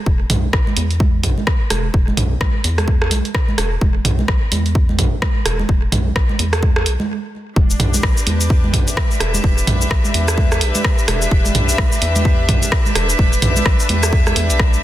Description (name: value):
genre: minimal techno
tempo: 128 BPM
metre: 4/4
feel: swing 60% on 16ths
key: E minor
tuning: A4 = 442 Hz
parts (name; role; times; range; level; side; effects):
- rubbery square bass; bass; 0.1-14.8 s; E1 to E2; -20 LUFS; equal; sidechain pumping
- electronic kick drum; drums; 0.1-14.7 s; none; -16 LUFS; equal; none
- punchy analog drum machine; drums; 0.3-14.8 s; cabasa, hi-hat, rim click; -22 LUFS; equal; soft clipping on snare
- organic electronic drum kit; percussion; 0.3-14.7 s; congas, rim click, toms; -21 LUFS; right 2 dB; overdrive, digital delay
- clear studio string section; texture; 7.6-14.8 s; D4 to E5; -22 LUFS; left 1 dB; sidechain pumping
room: light reverb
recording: dense, heavily limited modern master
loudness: -14 LUFS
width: side -14 dB against mid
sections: 0.0-7.6 A section; 7.6-14.8 B section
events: stop 7.1-7.6; drop 7.6-14.8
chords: 0.0 E5